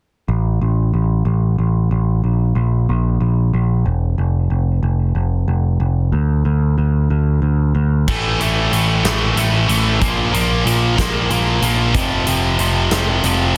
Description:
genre	quiet-loud alternative rock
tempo	62 BPM (dotted quarters)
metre	6/8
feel	straight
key	A phrygian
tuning	A4 = 441 Hz
part	growling picked electric bass	bass	0.3-13.5 s	E1 to D2	-18 LUFS	equal	overdrive
part	high-gain distorted guitar	riff	8.1-13.6 s	F2 to Bb3	-19 LUFS	equal	distortion
part	big rock drum kit	drums	8.1-13.4 s	crash cymbal, hi-hat, kick drum, snare drum	-25 LUFS	equal	none
room	small room ambience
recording	dense, heavily limited modern master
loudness	-17 LUFS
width	mono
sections	0.3-8.1 A section; 8.1-13.6 B section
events	none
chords	0.3 N.C.; 8.1 A5; 10.0 Bb5; 11.9 F5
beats	| 0.29 1.27 | 2.25 3.22 | 4.19 5.17 | 6.14 7.11 | 8.08 9.05 | 10.01 10.98 | 11.95 12.91

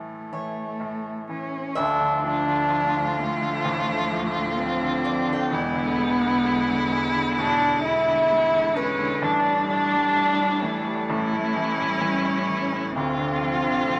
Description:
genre	acoustic folk-pop ballad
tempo	64 BPM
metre	4/4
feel	straight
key	D minor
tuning	A4 = 436 Hz
part	dark cello	melody	0.0-14.0 s	A3 to E4	-26 LUFS	equal	none
part	bright grand piano	accompaniment	0.0-14.0 s	D1 to G#3	-31 LUFS	equal	none
part	picked swing-style acoustic guitar	arpeggios	0.0-9.7 s	A4 to G5	-33 LUFS	equal	none
part	rich studio string section	sustained chords	1.7-14.0 s	D2 to F4	-34 LUFS	equal	none
part	rich violin	second line	1.8-14.0 s	D4 to F4	-30 LUFS	equal	none
room	moderate studio reverb, RT60 0.6 s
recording	none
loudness	-24 LUFS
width	mono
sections	0.0-1.8 A section; 1.8-14.0 B section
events	none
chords	0.0 A; 1.8 Dm; 5.5 E7; 9.2 A7sus4; 11.1 A7; 12.9 Dm7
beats	0.81 | 1.75 2.70 3.64 4.58 | 5.51 6.44 7.38 8.31 | 9.24 10.16 11.09 12.02 | 12.95 13.88

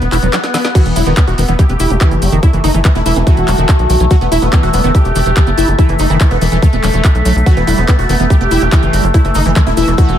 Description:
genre	psychedelic trance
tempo	143 BPM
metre	4/4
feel	straight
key	E harmonic minor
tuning	A4 = 439 Hz
part	supersaw stab	melody	0.0-10.2 s	E3 to G4	-18 LUFS	equal	phaser, sidechain pumping, ping-pong delay
part	overtone-sweeping drone	sustained chords	0.0-10.2 s	A3 to B3	-19 LUFS	left 1 dB	chorus, built-in reverb, sidechain pumping
part	liquid acid bass	riff	0.0-10.2 s	D#3 to F#4	-18 LUFS	equal	chorus, auto-pan, sidechain pumping, tape echo
part	tight sequencer bass	bass	0.0-10.2 s	E1 to B1	-14 LUFS	equal	none
part	drum and bass drum kit	drums	0.0-10.2 s	crash cymbal, handclaps, hi-hat, snare drum	-21 LUFS	equal	overdrive
part	maracas	percussion	0.0-10.2 s	none	-30 LUFS	right 6 dB	none
part	electronic kick drum	drums	0.8-10.1 s	none	-9 LUFS	equal	none
room	light reverb, digital ambience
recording	none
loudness	-9 LUFS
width	side -10 dB against mid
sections	0.0-10.2 A section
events	drum fill 0.3-0.8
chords	0.0 E5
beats	0.33 | 0.75 1.17 1.59 2.01 | 2.43 2.85 3.27 3.69 | 4.11 4.53 4.95 5.37 | 5.79 6.21 6.62 7.04 | 7.46 7.88 8.30 8.72 | 9.14 9.56 9.98

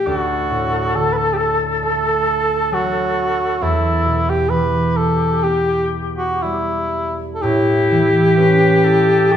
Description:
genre	celtic folk, Celtic slow air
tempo	59-68 BPM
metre	4/4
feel	rubato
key	E dorian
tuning	A4 = 440 Hz
part	mellow cor anglais	melody	0.0-9.4 s	E4 to B4	-17 LUFS	equal	none
part	concert harp	accompaniment	0.0-9.4 s	D2 to E4	-20 LUFS	right 2 dB	none
part	bright reedy wooden flute	second line	0.1-9.4 s	E4 to B4	-22 LUFS	left 3 dB	none
room	wet large studio reverb, RT60 1.1 s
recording	band playing live in one room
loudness	-14 LUFS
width	side -9 dB against mid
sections	0.0-7.4 A section; 7.4-9.4 B section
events	none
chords	0.1 D; 3.6 Em; 7.4 A7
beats	| 0.06 0.94 1.83 2.72 | 3.61 4.51 5.44 6.43 | 7.42 8.38 9.32

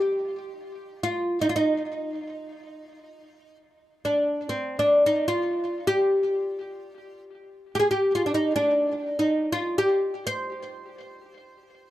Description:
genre	Turkish makam ensemble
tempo	free time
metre	none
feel	none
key	C makam nihavent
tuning	A4 = 439 Hz
part	oud	solo	0.0-11.9 s	C4 to C5	-23 LUFS	equal	tape echo
room	moderate studio reverb, RT60 0.6 s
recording	none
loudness	-22 LUFS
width	side -14 dB against mid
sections	0.0-11.9 A section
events	none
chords	none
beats	free time

